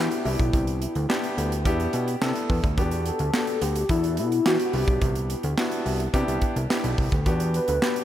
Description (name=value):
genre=early-eighties boogie funk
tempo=107 BPM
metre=4/4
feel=straight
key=unclear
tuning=A4 = 440 Hz
part: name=warm velvety synth lead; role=melody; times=0.0-8.0 s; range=E4 to B4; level=-28 LUFS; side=left 2 dB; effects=chorus, tape echo
part: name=warm concert grand piano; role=accompaniment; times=0.0-8.0 s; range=B3 to A4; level=-29 LUFS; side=equal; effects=none
part: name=fat analog bass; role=bass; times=0.0-7.8 s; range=B1 to E3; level=-26 LUFS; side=equal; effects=none
part: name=modern studio drum kit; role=drums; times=0.1-8.0 s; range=handclaps, hi-hat, kick drum, snare drum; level=-26 LUFS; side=equal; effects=none
room=moderate lush hall reverb, RT60 2.5 s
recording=big arena sound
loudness=-22 LUFS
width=side -12 dB against mid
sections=0.0-8.0 A section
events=none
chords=0.3 Cmaj7; 2.8 Em9; 4.7 Cmaj7; 7.3 Em9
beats=| 0.53 1.09 1.66 2.22 | 2.78 3.34 3.90 4.46 | 5.02 5.58 6.14 6.70 | 7.26 7.82